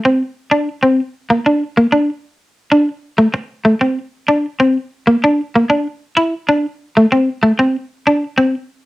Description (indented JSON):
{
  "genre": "highlife",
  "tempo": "127 BPM (dotted quarters)",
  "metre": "12/8",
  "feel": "straight",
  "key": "unclear",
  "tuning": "A4 = 439 Hz",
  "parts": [
    { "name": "semi-hollow electric guitar", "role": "solo", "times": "0.1-8.5 s", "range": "A3 to E4", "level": "-12 LUFS", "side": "equal", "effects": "analog chorus, cassette tape" }
  ],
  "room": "moderate studio reverb, RT60 0.5 s",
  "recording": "home recording on cassette",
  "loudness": "-13 LUFS",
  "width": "side -17 dB against mid",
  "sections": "0.0-8.9 A section",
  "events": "none",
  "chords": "none",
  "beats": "0.37 0.84 | 1.31 1.78 2.25 2.72 | 3.19 3.66 4.13 4.60 | 5.07 5.54 6.02 6.49 | 6.96 7.43 7.91 8.38"
}